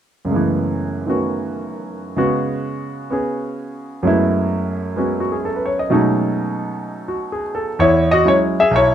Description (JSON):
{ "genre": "solo jazz", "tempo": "128 BPM", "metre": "4/4", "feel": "swing 67% on 8ths", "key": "unclear", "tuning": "A4 = 440 Hz", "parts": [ { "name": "clear concert grand piano", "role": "solo", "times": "0.2-8.9 s", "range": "B1 to E5", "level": "-17 LUFS", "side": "equal", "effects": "none" } ], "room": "moderate club reverb, RT60 0.8 s", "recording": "none", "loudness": "-16 LUFS", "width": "side -10 dB against mid", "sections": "0.3-7.8 A section; 7.8-8.9 B section", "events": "none", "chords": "0.3 F#m11; 2.2 C#7sus4; 4.0 F#m11; 5.9 B13; 7.8 E69", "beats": "| 0.30 0.77 1.23 1.70 | 2.17 2.64 3.10 3.57 | 4.04 4.51 4.97 5.44 | 5.91 6.38 6.84 7.31 | 7.78 8.25 8.71" }